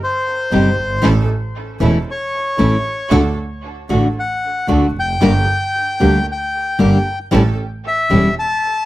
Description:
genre	tango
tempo	115 BPM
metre	4/4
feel	rubato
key	unclear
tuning	A4 = 436 Hz
part	bandoneon	melody	0.0-8.9 s	C5 to A5	-19 LUFS	left 2 dB	tape echo
part	nylon-string guitar	accompaniment	0.5-8.3 s	C3 to G4	-14 LUFS	left 1 dB	none
part	rich studio string section	stabs	0.5-8.3 s	C4 to Bb4	-27 LUFS	right 4 dB	tape echo
part	clear double bass	bass	0.5-8.3 s	E1 to D2	-18 LUFS	right 2 dB	none
room	light reverb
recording	none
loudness	-14 LUFS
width	side -16 dB against mid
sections	0.0-8.9 A section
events	none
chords	0.0 Cm; 1.0 A; 3.1 D; 5.2 Gm; 7.3 A7

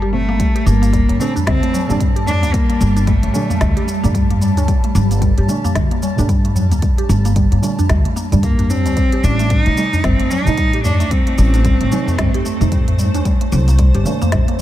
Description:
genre	organic downtempo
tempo	112 BPM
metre	4/4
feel	swing 59% on 16ths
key	G minor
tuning	A4 = 440 Hz
part	clear cello	melody	0.0-4.4, 8.4-13.0 s	G3 to Eb4	-21 LUFS	equal	tape echo
part	granular cloud pad	sustained chords	0.0-14.6 s	G3 to A5	-26 LUFS	right 1 dB	built-in reverb, sidechain pumping
part	mallet-like synth pluck	arpeggios	0.0-14.6 s	F#3 to G4	-23 LUFS	equal	wide subtle chorus, cassette tape, tape echo
part	upright bass	bass	0.0-14.4 s	G1 to A2	-16 LUFS	equal	none
part	organic electronic drum kit	drums	0.0-14.6 s	cabasa, hi-hat, snare drum	-28 LUFS	equal	low-pass filter on hats, low-pass filter on perc, low-pass filter on snare, low-pass filter on room
part	deep mellow chord stab	accompaniment	0.1-14.6 s	Bb2 to A4	-25 LUFS	right 3 dB	chorus, sidechain pumping, tape echo
part	tabla	percussion	0.1-14.6 s	none	-22 LUFS	equal	none
part	electronic kick drum	drums	0.4-14.5 s	none	-18 LUFS	equal	none
room	little or no reverb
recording	none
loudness	-13 LUFS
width	side -13 dB against mid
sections	0.4-14.6 A section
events	none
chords	0.4 Gmadd9; 9.0 Am7b5; 13.3 Cm7

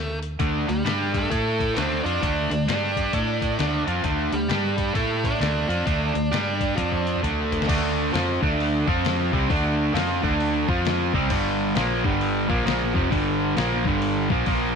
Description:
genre	blues rock power trio and southern rock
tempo	132 BPM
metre	4/4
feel	swing 62% on 8ths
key	D minor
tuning	A4 = 445 Hz
part	octave-fuzz lead guitar	melody	0.0-7.2 s	G3 to D4	-29 LUFS	right 2 dB	distortion
part	vintage muted fingered electric bass	bass	0.0-14.7 s	F1 to A2	-29 LUFS	equal	none
part	trip hop sampler-style drum kit	drums	0.2-14.6 s	crash cymbal, hi-hat, kick drum, snare drum, toms	-28 LUFS	left 3 dB	none
part	cranked stack guitar	riff	0.4-14.7 s	F2 to A4	-23 LUFS	right 1 dB	overdrive
room	light reverb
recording	1960s-style stereo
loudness	-21 LUFS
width	side -6 dB against mid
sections	0.0-7.7 A section; 7.7-14.8 B section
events	drum fill 6.8-7.7; kick and snare drop out 14.5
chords	0.0 D5; 0.9 G5; 1.3 A5; 1.8 Dm; 2.7 G5; 3.1 A5; 3.6 Dm; 4.5 G5; 5.0 A5; 5.4 Dm; 6.3 G5; 6.8 F5; 7.2 D5; 7.7 Dm; 8.8 F5; 9.3 Dm; 10.6 F5; 11.1 C5; 11.3 G5

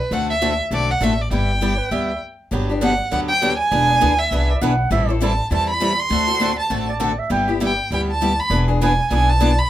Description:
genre	acoustic string swing (jazz manouche)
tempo	200 BPM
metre	4/4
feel	swing 58% on 8ths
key	G major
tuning	A4 = 442 Hz
part	warm violin	melody	0.0-9.7 s	B4 to C6	-20 LUFS	right 2 dB	none
part	picked steel-string acoustic guitar	accompaniment	0.1-9.5 s	D3 to A4	-23 LUFS	left 4 dB	none
part	picked swing-style acoustic guitar	accompaniment	0.1-9.5 s	D3 to B4	-27 LUFS	right 4 dB	none
part	upright bass	bass	0.1-9.6 s	E1 to E2	-22 LUFS	equal	none
part	breathy clarinet	second line	1.6-2.2, 4.5-7.5 s	B4 to G5	-24 LUFS	right 3 dB	none
room	moderate club reverb, RT60 0.5 s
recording	minimal, uncompressed stereo recording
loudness	-16 LUFS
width	side -12 dB against mid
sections	0.0-2.5 A section; 2.5-9.7 B section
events	stop 2.2-2.5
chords	0.1 D7; 1.3 G6; 2.5 Gmaj7; 3.7 E7; 4.9 Am7; 6.1 D7; 7.3 G6; 8.5 E7

